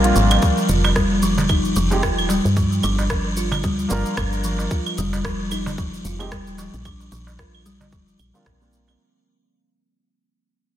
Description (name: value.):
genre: organic downtempo.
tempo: 112 BPM.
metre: 4/4.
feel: swing 57% on 16ths.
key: F dorian.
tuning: A4 = 440 Hz.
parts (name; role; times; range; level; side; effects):
felt-muted upright piano; accompaniment; 0.0-9.0 s; Ab3 to Bb4; -26 LUFS; right 2 dB; sidechain pumping, low-pass filter, ping-pong delay.
woody FM bass; bass; 0.0-9.0 s; Eb1 to G2; -23 LUFS; equal; none.
organic electronic drum kit; drums; 0.0-9.0 s; claves, hi-hat, rim click, shaker; -27 LUFS; right 2 dB; soft clipping on snare.
buzzing kalimba; arpeggios; 0.2-9.0 s; D3 to F4; -22 LUFS; left 1 dB; ping-pong delay.
darbuka; percussion; 0.3-9.0 s; none; -30 LUFS; right 2 dB; none.
electronic kick drum; drums; 0.4-8.6 s; none; -23 LUFS; equal; none.
room: light reverb.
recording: dense, heavily limited modern master.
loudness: -18 LUFS.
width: side -11 dB against mid.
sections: 0.4-9.0 A section.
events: break 0.0-0.4; fade-out 0.4-9.0.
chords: 0.4 F7(no3); 2.6 Gm7; 4.7 F7(no3); 6.9 Bbadd9.